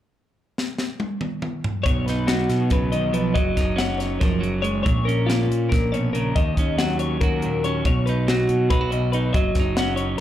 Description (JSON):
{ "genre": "math rock and midwest emo", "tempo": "280 BPM (eighths)", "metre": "7/8", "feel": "straight", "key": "B lydian", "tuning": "A4 = 440 Hz", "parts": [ { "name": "crisp fusion drum kit", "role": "drums", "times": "0.6-10.1 s", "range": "hi-hat, kick drum, snare drum, toms", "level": "-24 LUFS", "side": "equal", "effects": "none" }, { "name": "twelve-string electric guitar", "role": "arpeggios", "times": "1.8-10.2 s", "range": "E#4 to F#5", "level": "-26 LUFS", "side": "left 6 dB", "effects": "slapback echo" }, { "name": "clean electric guitar", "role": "accompaniment", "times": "1.9-10.2 s", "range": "A#2 to F#4", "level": "-23 LUFS", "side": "right 4 dB", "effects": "none" }, { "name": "fuzz fingered electric bass", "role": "bass", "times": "1.9-10.2 s", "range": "F#1 to B2", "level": "-25 LUFS", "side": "left 1 dB", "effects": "overdrive" } ], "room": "little or no reverb", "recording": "live gig heard through the venue's PA, club reverb", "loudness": "-19 LUFS", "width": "side -12 dB against mid", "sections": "0.4-1.9 A section; 1.9-10.2 B section", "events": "drum fill 0.6-1.9", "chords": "0.4 N.C.; 1.9 B; 3.4 F#6; 4.9 A#m; 6.4 D#m7; 7.8 B; 9.3 F#5", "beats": "| 0.36 0.57 0.79 1.00 1.22 1.43 1.64 | 1.86 2.07 2.29 2.50 2.71 2.93 3.14 | 3.36 3.57 3.79 4.00 4.21 4.43 4.64 | 4.86 5.07 5.28 5.50 5.71 5.92 6.14 | 6.35 6.57 6.78 6.99 7.21 7.42 7.63 | 7.85 8.06 8.27 8.49 8.70 8.91 9.13 | 9.34 9.55 9.77 9.98 10.19" }